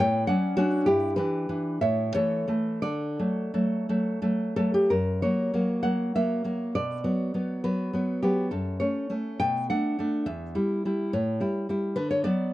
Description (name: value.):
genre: romantic piece for solo classical guitar.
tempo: 56-72 BPM (dotted quarters).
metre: 6/8.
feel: rubato.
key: unclear.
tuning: A4 = 445 Hz.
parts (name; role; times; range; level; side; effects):
nylon-string guitar; solo; 0.0-12.5 s; E2 to G5; -24 LUFS; equal; none.
room: small room ambience.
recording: dry, close 1970s-style studio recording.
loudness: -24 LUFS.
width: side -16 dB against mid.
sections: 0.0-4.9 A section; 4.9-12.5 A section.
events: none.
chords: 0.0 F#m/A; 0.9 G6; 1.8 A; 2.8 D; 4.9 F#7; 6.8 Bm; 8.5 F#m; 9.4 Bm7; 10.3 Em; 11.1 A7; 12.0 Bm/D.